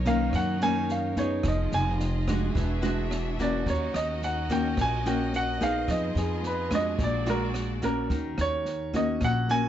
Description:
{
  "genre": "bossa nova",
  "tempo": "108 BPM",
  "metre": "4/4",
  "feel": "straight",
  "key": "Eb minor",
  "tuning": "A4 = 440 Hz",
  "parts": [
    { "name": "nylon-string guitar", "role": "accompaniment", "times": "0.0-9.7 s", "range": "F#2 to Ab4", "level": "-29 LUFS", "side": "left 2 dB", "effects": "none" },
    { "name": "muted studio violin section", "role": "sustained chords", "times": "0.0-8.1 s", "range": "Bb3 to E5", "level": "-39 LUFS", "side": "left 1 dB", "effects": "none" },
    { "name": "upright bass", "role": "bass", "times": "0.0-9.7 s", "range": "E1 to F#2", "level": "-30 LUFS", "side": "equal", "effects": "none" },
    { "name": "warm grand piano", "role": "melody", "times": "0.1-9.7 s", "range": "Ab4 to Ab5", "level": "-29 LUFS", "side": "right 2 dB", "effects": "plate reverb" },
    { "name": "open jazz drum kit", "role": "drums", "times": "0.1-9.6 s", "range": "kick drum, rim click, snare drum", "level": "-34 LUFS", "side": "equal", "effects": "none" }
  ],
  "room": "light reverb",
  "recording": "nothing above 7.8 kHz",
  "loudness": "-25 LUFS",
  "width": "side -11 dB against mid",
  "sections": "0.0-8.1 A section; 8.1-9.7 B section",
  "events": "grand piano solo 0.0-8.1",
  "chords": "0.0 Bmaj9; 1.4 Fm7b5; 2.6 E9; 3.7 Ebm7; 5.9 Fm7b5; 7.0 Bb7b13; 8.1 Ebm7"
}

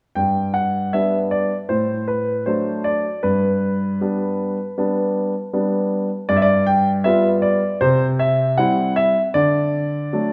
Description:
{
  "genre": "classical-period piano sonatina",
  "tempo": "78 BPM",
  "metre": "4/4",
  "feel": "straight",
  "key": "G major",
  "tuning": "A4 = 440 Hz",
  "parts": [
    { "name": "warm grand piano", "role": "solo", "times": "0.2-10.3 s", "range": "G2 to G5", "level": "-19 LUFS", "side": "equal", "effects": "none" }
  ],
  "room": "wet recital hall reverb, RT60 1.7 s",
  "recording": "none",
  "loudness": "-19 LUFS",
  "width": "mono",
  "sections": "0.2-10.3 A section",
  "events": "none",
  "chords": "0.2 G; 1.7 D/A; 3.2 G; 6.3 G7; 7.8 C; 9.3 D"
}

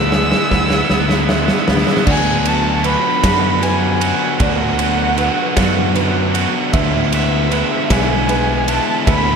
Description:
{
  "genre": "post-rock",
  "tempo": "52 BPM (dotted quarters)",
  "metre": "6/8",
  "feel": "straight",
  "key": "unclear",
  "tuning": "A4 = 440 Hz",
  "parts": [
    { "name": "muted violin", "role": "melody", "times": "0.0-9.4 s", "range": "E5 to E6", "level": "-21 LUFS", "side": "right 1 dB", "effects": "slapback echo, digital delay" },
    { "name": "glassy FM pad", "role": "sustained chords", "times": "0.2-9.4 s", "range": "G#3 to B5", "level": "-31 LUFS", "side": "left 1 dB", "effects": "none" },
    { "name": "felt-muted upright piano", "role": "arpeggios", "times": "0.0-9.4 s", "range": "B4 to F#5", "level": "-28 LUFS", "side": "right 3 dB", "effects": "slapback echo, digital delay" },
    { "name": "twangy electric guitar", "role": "arpeggios", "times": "0.0-2.1 s", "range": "D3 to E4", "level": "-27 LUFS", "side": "left 4 dB", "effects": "spring reverb, slapback echo, digital delay" },
    { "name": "crunchy overdriven guitar", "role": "riff", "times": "0.0-9.4 s", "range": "D3 to F#4", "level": "-22 LUFS", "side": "left 13 dB", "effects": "slapback echo" },
    { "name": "crunchy overdriven guitar", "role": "riff", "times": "0.0-9.4 s", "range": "D3 to F#4", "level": "-20 LUFS", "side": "right 13 dB", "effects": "slapback echo" },
    { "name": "fuzz fingered electric bass", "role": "bass", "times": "0.0-9.4 s", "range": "B1 to F#2", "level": "-20 LUFS", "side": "equal", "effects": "overdrive" },
    { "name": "big rock drum kit", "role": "drums", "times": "0.1-9.3 s", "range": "crash cymbal, kick drum, ride cymbal, snare drum", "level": "-19 LUFS", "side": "right 1 dB", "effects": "none" }
  ],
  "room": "moderate lush hall reverb, RT60 2.3 s",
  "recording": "big arena sound",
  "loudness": "-13 LUFS",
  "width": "side -6 dB against mid",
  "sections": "0.0-2.1 A section; 2.1-9.4 B section",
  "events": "build-up 0.0-2.1; drum fill 0.0-2.1",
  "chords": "0.0 E/D; 2.1 Bm/D; 6.7 E"
}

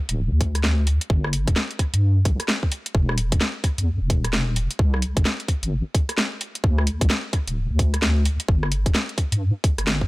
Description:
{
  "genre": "UK garage, two-step garage",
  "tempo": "130 BPM",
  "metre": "4/4",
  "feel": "swing 63% on 16ths",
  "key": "unclear",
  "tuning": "A4 = 440 Hz",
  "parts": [
    { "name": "deep soft wobble bass", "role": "bass", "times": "0.1-10.1 s", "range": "D1 to G2", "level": "-21 LUFS", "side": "equal", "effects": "chorus, sidechain pumping" },
    { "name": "garage drum kit", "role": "drums", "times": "0.1-10.0 s", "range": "hi-hat, rim click, snare drum", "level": "-24 LUFS", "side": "equal", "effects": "none" },
    { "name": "electronic kick drum", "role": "drums", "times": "0.4-10.1 s", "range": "none", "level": "-20 LUFS", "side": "equal", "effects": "none" }
  ],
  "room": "little or no reverb",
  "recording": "none",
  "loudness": "-20 LUFS",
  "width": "side -20 dB against mid",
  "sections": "0.0-10.1 A section",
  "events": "none",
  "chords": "none"
}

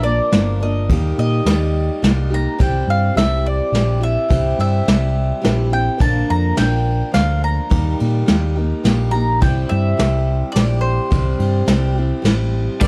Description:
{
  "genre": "folk rock and heartland rock",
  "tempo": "106 BPM",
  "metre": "3/4",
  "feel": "straight",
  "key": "C mixolydian",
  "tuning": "A4 = 440 Hz",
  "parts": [
    { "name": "mandolin", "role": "melody", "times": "0.0-12.9 s", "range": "C5 to Bb5", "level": "-25 LUFS", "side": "equal", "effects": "none" },
    { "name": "picked steel-string acoustic guitar", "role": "accompaniment", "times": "0.0-12.9 s", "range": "G2 to Bb4", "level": "-25 LUFS", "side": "equal", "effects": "none" },
    { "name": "hollow-body short-scale picked electric bass", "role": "bass", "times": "0.0-12.9 s", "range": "G1 to Bb2", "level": "-21 LUFS", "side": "equal", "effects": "none" },
    { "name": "soft brush drum kit", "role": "drums", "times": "0.3-12.9 s", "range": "crash cymbal, kick drum, ride cymbal, snare drum", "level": "-22 LUFS", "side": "equal", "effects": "none" },
    { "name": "tonewheel organ", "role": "sustained chords", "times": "12.8-12.9 s", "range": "B3 to A4", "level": "-32 LUFS", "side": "equal", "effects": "none" },
    { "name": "overdriven electric guitar", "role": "riff", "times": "12.8-12.9 s", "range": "G3", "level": "-23 LUFS", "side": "equal", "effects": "none" }
  ],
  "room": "little or no reverb",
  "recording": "none",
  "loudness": "-17 LUFS",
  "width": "mono",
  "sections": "0.0-12.8 A section",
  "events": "none",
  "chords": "0.0 Bb; 0.9 Eb; 2.6 C; 6.0 Bb; 7.7 Eb; 9.4 C"
}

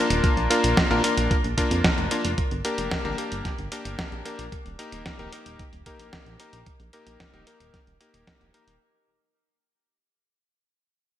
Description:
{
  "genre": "italo disco",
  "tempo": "112 BPM",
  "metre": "4/4",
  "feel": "straight",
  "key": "Eb major",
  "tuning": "A4 = 440 Hz",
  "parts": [
    { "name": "clear electric grand piano", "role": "stabs", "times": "0.0-8.7 s", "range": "Bb3 to Bb4", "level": "-26 LUFS", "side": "left 2 dB", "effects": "low-pass filter, digital delay" },
    { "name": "chorused synth bass", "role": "bass", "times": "0.1-8.8 s", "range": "Eb1 to F2", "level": "-29 LUFS", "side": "right 1 dB", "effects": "none" },
    { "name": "dusty soul sampler-style drum kit", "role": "drums", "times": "0.1-8.8 s", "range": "hi-hat, snare drum", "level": "-27 LUFS", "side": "equal", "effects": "gated reverb" },
    { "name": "electronic kick drum", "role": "drums", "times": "0.2-8.4 s", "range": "none", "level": "-27 LUFS", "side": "equal", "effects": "none" }
  ],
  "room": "moderate lush hall reverb, RT60 1.9 s",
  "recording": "bright 1980s-style digital production",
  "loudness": "-22 LUFS",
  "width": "side -11 dB against mid",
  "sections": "0.0-8.8 A section",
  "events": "fade-out 0.0-8.8",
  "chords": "0.2 Bb; 2.4 Gm; 4.5 Eb"
}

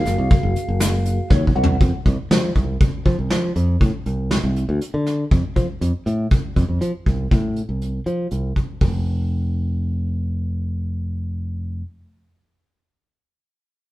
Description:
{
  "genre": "progressive instrumental, band music in an uneven meter",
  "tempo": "120 BPM",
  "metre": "7/4",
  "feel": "straight",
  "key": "unclear",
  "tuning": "A4 = 440 Hz",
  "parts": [
    { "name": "bright reedy silver concert flute", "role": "melody", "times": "0.0-1.3 s", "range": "F5", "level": "-28 LUFS", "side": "equal", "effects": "none" },
    { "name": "mellow tine electric piano", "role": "accompaniment", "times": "0.0-1.8 s", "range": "Gb3 to Gb5", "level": "-28 LUFS", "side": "left 1 dB", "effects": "overdrive, medium stereo tremolo" },
    { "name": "modern bright fingered electric bass", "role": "bass", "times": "0.1-11.8 s", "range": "F1 to F3", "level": "-21 LUFS", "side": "equal", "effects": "none" },
    { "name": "vintage brush drum kit", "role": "drums", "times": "0.1-8.9 s", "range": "hi-hat, kick drum, snare drum, toms", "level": "-19 LUFS", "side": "equal", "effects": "none" },
    { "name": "egg shaker", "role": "percussion", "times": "0.1-1.2 s", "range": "none", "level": "-32 LUFS", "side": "left 6 dB", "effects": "none" }
  ],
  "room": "moderate stone room reverb, RT60 1.1 s",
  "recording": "band playing live in one room",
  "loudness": "-18 LUFS",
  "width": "side -16 dB against mid",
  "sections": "0.0-1.8 A section; 1.8-8.8 B section; 8.8-12.3 C section",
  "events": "tine electric piano fill 1.1-1.8; drum fill 1.3-1.8",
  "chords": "0.0 Gbadd9; 1.8 F; 8.8 N.C."
}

